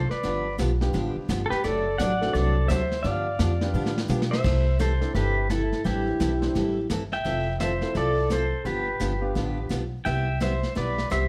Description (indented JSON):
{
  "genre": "country, western swing",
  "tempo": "171 BPM",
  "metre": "4/4",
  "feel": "swing 63% on 8ths",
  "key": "C major",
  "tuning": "A4 = 440 Hz",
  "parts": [
    { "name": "pedal steel guitar", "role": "melody", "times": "0.0-11.3 s", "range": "E4 to G5", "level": "-31 LUFS", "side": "equal", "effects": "none" },
    { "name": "dark clarinet", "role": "second line", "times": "0.0-11.3 s", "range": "E4 to E5", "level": "-34 LUFS", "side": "equal", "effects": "none" },
    { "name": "upright bass", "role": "bass", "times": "0.0-11.3 s", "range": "F1 to B2", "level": "-29 LUFS", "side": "equal", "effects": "none" },
    { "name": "vintage brush drum kit", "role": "drums", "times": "0.1-11.3 s", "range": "brushed snare drum, crash cymbal, hi-hat, kick drum, snare drum, toms", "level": "-34 LUFS", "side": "equal", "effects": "none" },
    { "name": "picked steel-string acoustic guitar", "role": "accompaniment", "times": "0.2-11.2 s", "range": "C3 to A4", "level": "-34 LUFS", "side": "equal", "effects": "none" },
    { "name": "clear upright piano", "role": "accompaniment", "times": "0.8-9.7 s", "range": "G3 to C5", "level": "-36 LUFS", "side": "equal", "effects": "none" }
  ],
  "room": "moderate studio reverb, RT60 0.8 s",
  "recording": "none",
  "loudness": "-25 LUFS",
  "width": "mono",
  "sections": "0.0-4.4 A section; 4.4-11.3 B section",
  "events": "drum fill 3.7-4.4",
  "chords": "0.2 G7; 1.6 D7/F#; 3.0 G7; 4.4 C69; 5.8 Am11; 7.3 Fmaj7; 8.7 G7; 10.1 Cmaj7"
}